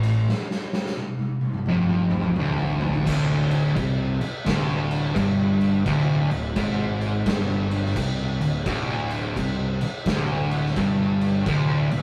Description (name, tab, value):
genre	stoner and doom metal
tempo	86 BPM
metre	4/4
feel	swing 64% on 8ths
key	D minor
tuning	A4 = 440 Hz
part	fuzz guitar	riff	0.0-12.0 s	D2 to C3	-25 LUFS	equal	distortion
part	fuzz fingered electric bass	bass	0.0-12.0 s	D1 to C2	-32 LUFS	equal	overdrive
part	oversized low-tuned drum kit	drums	0.0-12.0 s	crash cymbal, kick drum, ride cymbal, snare drum, toms	-30 LUFS	equal	none
room	light reverb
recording	rough rehearsal-room recording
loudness	-23 LUFS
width	mono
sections	0.0-3.1 A section; 3.1-12.0 B section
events	drum fill 0.3-3.1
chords	0.0 Dm; 3.1 N.C.